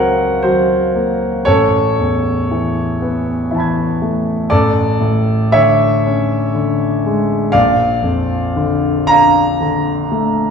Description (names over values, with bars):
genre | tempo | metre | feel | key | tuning
classical, impressionist solo piano | 59 BPM | 3/4 | rubato | unclear | A4 = 442 Hz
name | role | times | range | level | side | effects
warm grand piano | solo | 0.0-10.5 s | A1 to G#6 | -12 LUFS | equal | none
room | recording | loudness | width
wet recital hall reverb, RT60 1.5 s | recorded in a church or concert hall | -12 LUFS | side -6 dB against mid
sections
0.0-10.5 A section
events
none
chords
0.0 Gbmaj7#11/Db; 1.5 Amaj9; 4.5 D5/A; 7.5 Bbmaj7